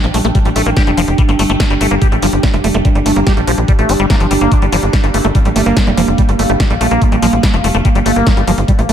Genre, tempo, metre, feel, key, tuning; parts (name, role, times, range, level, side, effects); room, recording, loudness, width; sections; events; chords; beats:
psychedelic trance; 144 BPM; 4/4; straight; G minor; A4 = 440 Hz
pulsing gated texture; sustained chords; 0.0-8.9 s; G3 to D4; -18 LUFS; right 3 dB; chorus, built-in reverb, sidechain pumping
liquid acid bass; riff; 0.0-8.9 s; F3 to G4; -17 LUFS; moving between left 5 dB and right 3 dB; phaser, auto-pan, cassette tape, sidechain pumping, diffuse ambient delay
tight sequencer bass; bass; 0.0-8.9 s; F1 to Bb1; -16 LUFS; equal
techno drum kit; drums; 0.0-8.9 s; hi-hat, snare drum; -21 LUFS; equal; overdrive
warbly tape-like pad; texture; 0.0-8.9 s; D4 to G5; -21 LUFS; right 2 dB; chorus, built-in reverb, sidechain pumping
electronic kick drum; drums; 0.3-8.8 s; -12 LUFS; equal
light reverb, digital ambience; -10 LUFS; side -9 dB against mid
0.0-8.9 A section
0.0 G5
0.35 0.77 | 1.18 1.60 2.02 2.43 | 2.85 3.27 3.68 4.10 | 4.52 4.93 5.35 5.77 | 6.18 6.60 7.02 7.43 | 7.85 8.27 8.68